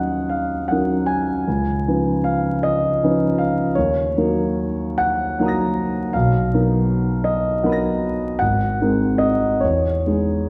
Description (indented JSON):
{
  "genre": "classical, impressionist solo piano",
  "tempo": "52 BPM (dotted quarters)",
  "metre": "6/8",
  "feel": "uneven beats, rubato",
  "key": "Eb minor",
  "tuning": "A4 = 438 Hz",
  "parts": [
    { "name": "clear concert grand piano", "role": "solo", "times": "0.0-10.5 s", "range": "Ab1 to Bb6", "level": "-20 LUFS", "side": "equal", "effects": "none" }
  ],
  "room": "wet recital hall reverb, RT60 1.8 s",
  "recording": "heard from further back in the room, vinyl crackle",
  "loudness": "-20 LUFS",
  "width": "mono",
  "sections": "0.0-10.5 A section",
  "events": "none",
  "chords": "0.0 Ebm7; 1.5 Db9; 3.8 Ebm7; 6.1 Bmaj7#11; 8.4 Ab9; 9.6 Emaj7",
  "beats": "0.31 | 1.46 2.64 | 3.76 4.99 | 6.14 7.25 | 8.41 9.62"
}